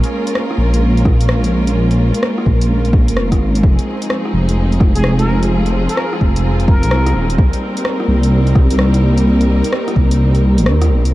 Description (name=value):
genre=future garage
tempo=128 BPM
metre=4/4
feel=swing 65% on 16ths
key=unclear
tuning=A4 = 440 Hz
part: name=rich studio string section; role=sustained chords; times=0.0-11.1 s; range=F3 to Bb4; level=-18 LUFS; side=equal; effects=sidechain pumping
part: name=swelling detuned saw bass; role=bass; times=0.0-11.1 s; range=Eb1 to Eb2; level=-13 LUFS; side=equal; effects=tube saturation, sidechain pumping
part: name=deep house drum kit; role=drums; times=0.0-11.1 s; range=hi-hat, rim click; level=-24 LUFS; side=left 1 dB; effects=vintage 12-bit sampler grit
part: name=electronic kick drum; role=drums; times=1.1-10.1 s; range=none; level=-13 LUFS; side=equal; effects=vintage 12-bit sampler grit
part: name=trumpet with plunger mute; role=melody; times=5.0-7.3 s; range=Ab4 to Bb4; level=-27 LUFS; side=equal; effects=analog delay
room=moderate huge ambient reverb, RT60 8.6 s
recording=dreamy mix soaked in reverb, vinyl crackle, low-pass filter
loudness=-11 LUFS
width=side -16 dB against mid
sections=0.0-11.1 A section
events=kick drops out 10.2-11.1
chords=0.0 Bbm7; 3.6 Fm7; 7.4 Cm7